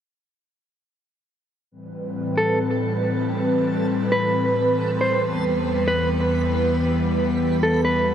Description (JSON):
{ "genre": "hip hop", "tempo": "137 BPM", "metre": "4/4", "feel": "half-time", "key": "A minor", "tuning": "A4 = 441 Hz", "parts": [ { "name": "airy breathy pad", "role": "sustained chords", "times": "1.7-8.1 s", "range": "E2 to B4", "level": "-21 LUFS", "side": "equal", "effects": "chorus" }, { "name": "backwards swelling texture", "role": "texture", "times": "3.3-8.1 s", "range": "G3 to B4", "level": "-33 LUFS", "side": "right 1 dB", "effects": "built-in reverb" }, { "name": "mellow electric guitar", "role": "melody", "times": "2.4-8.1 s", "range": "A4 to C5", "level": "-24 LUFS", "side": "equal", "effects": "spring reverb, tape echo" } ], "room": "light reverb, digital ambience", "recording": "dry, gritty hardware recording", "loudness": "-19 LUFS", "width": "side -9 dB against mid", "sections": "1.7-8.1 A section", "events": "none", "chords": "1.7 Am7; 5.2 Em", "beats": "| 1.72 2.15 2.59 3.03 | 3.47 3.90 4.34 4.78 | 5.22 5.66 6.09 6.53 | 6.97 7.41 7.85" }